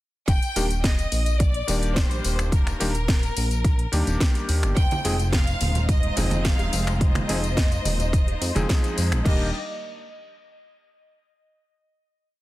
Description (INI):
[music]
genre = nu-disco, nu disco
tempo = 107 BPM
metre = 4/4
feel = straight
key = Eb major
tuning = A4 = 440 Hz
[part]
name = clear studio violin section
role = melody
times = 0.3-9.5 s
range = Bb4 to G5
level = -31 LUFS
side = equal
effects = analog delay
[part]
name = chorused synth bass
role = bass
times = 0.3-9.5 s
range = Eb1 to F2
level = -25 LUFS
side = equal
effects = sidechain pumping
[part]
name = electronic kick drum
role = drums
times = 0.3-9.4 s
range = none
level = -21 LUFS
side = equal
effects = none
[part]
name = house drum kit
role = drums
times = 0.3-9.4 s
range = crash cymbal, finger snaps, hi-hat, snare drum, tambourine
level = -30 LUFS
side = left 1 dB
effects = none
[part]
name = bright electric grand piano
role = accompaniment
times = 0.6-9.5 s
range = Eb3 to Ab4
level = -29 LUFS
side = left 1 dB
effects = sidechain pumping
[part]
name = bright studio string section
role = sustained chords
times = 4.8-9.5 s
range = Ab3 to D5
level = -34 LUFS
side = left 1 dB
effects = sidechain pumping
[part]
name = congas and bongos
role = percussion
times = 4.9-8.7 s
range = none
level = -31 LUFS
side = right 2 dB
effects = none
[sound]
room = digital ambience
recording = dense, heavily limited modern master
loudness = -20 LUFS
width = side -17 dB against mid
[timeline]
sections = 0.3-9.3 drop; 9.3-11.5 final chord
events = drop 0.3-9.3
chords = 0.3 Ebmaj7; 4.8 Fm7; 9.3 Ebmaj7